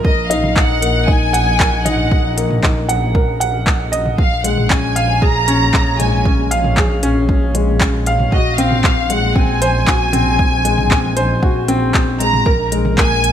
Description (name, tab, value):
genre	piano and strings electronica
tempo	116 BPM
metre	4/4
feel	straight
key	unclear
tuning	A4 = 440 Hz
part	rich studio violin section	melody	0.0-13.3 s	Eb5 to Bb5	-19 LUFS	equal	none
part	warm upright piano	riff	0.0-13.3 s	Ab3 to Gb5	-18 LUFS	left 2 dB	ping-pong delay
part	rich symphonic double bass section	bass	0.0-13.3 s	Bb1	-19 LUFS	equal	sidechain pumping
part	electronic kick drum	drums	0.0-13.1 s	none	-16 LUFS	equal	studio reverb
part	organic electronic drum kit	drums	0.3-13.3 s	handclaps, hi-hat, toms	-20 LUFS	equal	overdrive, studio reverb
room	light reverb, studio reverb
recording	none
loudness	-12 LUFS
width	side -10 dB against mid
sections	0.0-13.3 A section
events	none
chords	0.0 Ebm/Bb; 4.2 Db/Bb; 8.3 Ab7/Bb; 12.5 Bb5